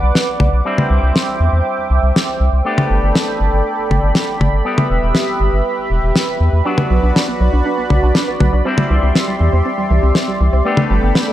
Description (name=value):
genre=italo disco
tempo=120 BPM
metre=4/4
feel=straight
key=unclear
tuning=A4 = 440 Hz
part: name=warm analog pad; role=sustained chords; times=0.0-11.3 s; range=F#4 to D6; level=-19 LUFS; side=right 1 dB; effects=chorus, shimmer reverb
part: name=electric guitar with an envelope filter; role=stabs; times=0.0-11.3 s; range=F#3 to G4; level=-24 LUFS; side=left 3 dB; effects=spring reverb, low-pass filter, ping-pong delay, shimmer reverb
part: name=round analog bass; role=bass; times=0.0-11.1 s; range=E1 to E2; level=-14 LUFS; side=equal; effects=none
part: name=damped 70s drum kit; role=drums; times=0.2-11.3 s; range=snare drum, toms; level=-17 LUFS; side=left 1 dB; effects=small room ambience
part: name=analog pluck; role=arpeggios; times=6.7-11.3 s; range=E3 to D4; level=-22 LUFS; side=right 3 dB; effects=chorus, ping-pong delay, shimmer reverb
room=light reverb, small room ambience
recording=none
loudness=-13 LUFS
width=side -13 dB against mid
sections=0.0-11.3 A section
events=none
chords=0.0 Bm; 0.7 Cadd9; 2.7 Gadd9; 4.7 Em; 6.7 Bm; 8.7 Cadd9; 10.7 Gadd9